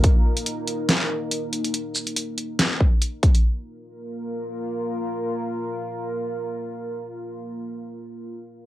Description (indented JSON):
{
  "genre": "deep dubstep",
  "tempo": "141 BPM",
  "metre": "4/4",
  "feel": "swing 55% on 16ths, half-time",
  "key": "unclear",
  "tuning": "A4 = 439 Hz",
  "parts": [
    { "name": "deep dark ambient pad", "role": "sustained chords", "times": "0.0-7.6 s", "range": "Bb3 to Bb4", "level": "-29 LUFS", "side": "equal", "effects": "chorus, built-in reverb, cassette tape" },
    { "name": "dubstep drum kit", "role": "drums", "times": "0.0-3.4 s", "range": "hi-hat, shaker, snare drum", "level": "-22 LUFS", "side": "equal", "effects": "overdrive, cassette tape" },
    { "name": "electronic kick drum", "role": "drums", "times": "0.0-0.1, 2.8-3.3 s", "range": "none", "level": "-17 LUFS", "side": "equal", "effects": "overdrive, cassette tape" }
  ],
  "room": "moderate studio ambience, RT60 0.5 s",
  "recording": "home recording on cassette",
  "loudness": "-22 LUFS",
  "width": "side -14 dB against mid",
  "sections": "0.0-3.4 A section; 3.4-6.8 B section",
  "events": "none",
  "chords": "0.0 Bb5",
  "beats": "| 0.04 0.46 0.89 1.31 | 1.74 2.17 2.59 3.02 | 3.44 3.87 4.29 4.72 | 5.14 5.57 6.00 6.42"
}